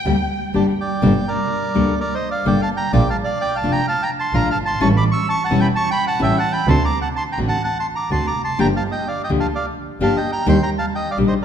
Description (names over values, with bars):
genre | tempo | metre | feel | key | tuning
tango | 127 BPM | 4/4 | rubato | G minor | A4 = 439 Hz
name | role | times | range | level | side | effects
warm studio violin section | second line | 0.0-0.8 s | G5 | -28 LUFS | left 2 dB | none
nylon-string guitar | accompaniment | 0.1-11.3 s | D3 to A4 | -21 LUFS | left 3 dB | none
dark double bass | bass | 0.1-11.4 s | E1 to Eb2 | -22 LUFS | right 3 dB | none
bandoneon | melody | 0.6-11.4 s | Bb4 to E6 | -21 LUFS | right 2 dB | none
room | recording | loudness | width
wet concert hall reverb, RT60 2.3 s | recorded in a church or concert hall | -16 LUFS | side -8 dB against mid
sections
0.0-1.0 A section; 1.0-11.4 B section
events
violin section solo 0.0-1.0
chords
0.0 Gm; 1.0 Gmadd9; 2.9 Bbmaj7; 4.8 A7; 6.7 D7; 8.6 Gm7; 10.5 Ebmaj7